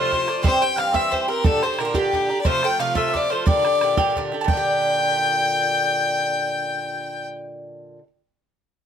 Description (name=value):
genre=celtic folk, Celtic jig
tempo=119 BPM (dotted quarters)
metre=6/8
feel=straight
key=G dorian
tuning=A4 = 441 Hz
part: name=rich fiddle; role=melody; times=0.0-7.3 s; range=G4 to G5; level=-22 LUFS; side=left 2 dB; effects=none
part: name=mandolin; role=second line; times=0.0-8.0 s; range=G4 to A5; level=-31 LUFS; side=right 5 dB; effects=none
part: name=mid whistle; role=second line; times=0.0-7.3 s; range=G5 to G6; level=-27 LUFS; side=left 3 dB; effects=none
part: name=Irish bouzouki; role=accompaniment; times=0.0-8.1 s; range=G2 to G4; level=-25 LUFS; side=right 2 dB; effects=none
part: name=bodhran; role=percussion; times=0.1-4.6 s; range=none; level=-22 LUFS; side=right 2 dB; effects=none
room=light reverb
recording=none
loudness=-18 LUFS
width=side -8 dB against mid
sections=0.0-4.5 A section; 4.5-6.5 B section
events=none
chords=0.4 C; 1.4 Gm; 2.5 F; 3.5 Gm